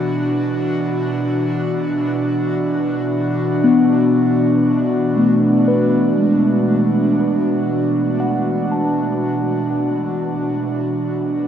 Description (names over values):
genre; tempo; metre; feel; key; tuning
ambient; 59 BPM; 4/4; straight; B dorian; A4 = 440 Hz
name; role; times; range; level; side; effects
airy breathy pad; sustained chords; 0.0-11.5 s; B2 to F#4; -18 LUFS; right 1 dB; chorus
mellow tine electric piano; arpeggios; 3.6-11.5 s; G#3 to A5; -18 LUFS; left 2 dB; analog delay
room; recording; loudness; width
wet spring reverb, RT60 2.6 s; echo-heavy mix; -15 LUFS; side -9 dB against mid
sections
0.0-3.6 A section; 3.6-11.5 B section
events
none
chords
0.0 Bm